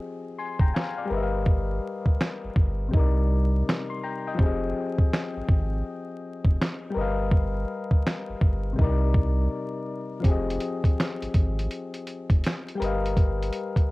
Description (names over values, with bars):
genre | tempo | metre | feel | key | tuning
lo-fi hip hop | 82 BPM | 4/4 | swing 64% on 16ths | F dorian | A4 = 442 Hz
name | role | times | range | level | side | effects
soft electric-piano-like synth keys | accompaniment | 0.0-13.9 s | C3 to C6 | -30 LUFS | left 4 dB | chorus, cassette tape, low-pass filter
saturated sub bass | bass | 0.6-13.5 s | F1 to C2 | -26 LUFS | equal | none
dusty soul sampler-style drum kit | drums | 0.6-13.9 s | finger snaps, hi-hat, kick drum, snare drum | -22 LUFS | equal | cassette tape
room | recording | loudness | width
little or no reverb | home recording on cassette, vinyl crackle | -23 LUFS | side -21 dB against mid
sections
0.0-13.9 A section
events
break 0.0-10.2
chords
0.0 Fm9; 1.1 G7alt; 2.9 Cm9; 4.4 Fm9; 7.0 G7alt; 8.8 Cm9; 10.2 Fm9; 12.8 G7alt